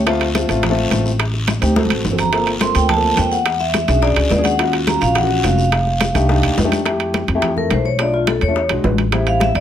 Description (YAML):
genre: Afro-Cuban jazz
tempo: 212 BPM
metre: 4/4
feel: straight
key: unclear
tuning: A4 = 439 Hz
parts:
  - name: upright bass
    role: bass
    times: 0.0-9.6 s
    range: F1 to F2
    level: -19 LUFS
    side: equal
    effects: none
  - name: dark grand piano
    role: accompaniment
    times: 0.1-9.5 s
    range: G3 to A4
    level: -20 LUFS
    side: left 2 dB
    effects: none
  - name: bongos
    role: percussion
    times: 0.1-9.5 s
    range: none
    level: -27 LUFS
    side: left 5 dB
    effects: none
  - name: congas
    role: percussion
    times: 0.1-9.6 s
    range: none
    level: -25 LUFS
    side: left 2 dB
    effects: none
  - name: guiro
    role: percussion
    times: 0.1-6.9 s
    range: none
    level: -29 LUFS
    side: left 3 dB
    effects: none
  - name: timbales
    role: percussion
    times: 0.1-9.6 s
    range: none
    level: -23 LUFS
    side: right 7 dB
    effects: none
  - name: vibraphone with medium hard mallets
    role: melody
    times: 2.2-9.6 s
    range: F4 to C6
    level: -19 LUFS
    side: right 1 dB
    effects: none
room: light reverb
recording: close, detailed microphones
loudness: -14 LUFS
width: side -10 dB against mid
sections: 0.0-6.9 A section; 6.9-9.6 B section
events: drum fill 1.8-2.3; vibraphone solo 6.9-9.6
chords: 0.1 Dm7; 1.2 Am7b5; 1.8 D7; 2.3 Gm11; 3.5 E13; 4.6 Ebm9; 5.7 F13; 6.9 Fmaj9; 8.0 Bm7b5; 8.6 E7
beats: | 0.07 0.35 0.63 0.92 | 1.20 1.48 1.76 2.04 | 2.33 2.61 2.89 3.18 | 3.46 3.74 4.03 4.31 | 4.59 4.88 5.16 5.44 | 5.72 6.01 6.29 6.58 | 6.86 7.14 7.43 7.71 | 7.99 8.28 8.56 8.84 | 9.13 9.41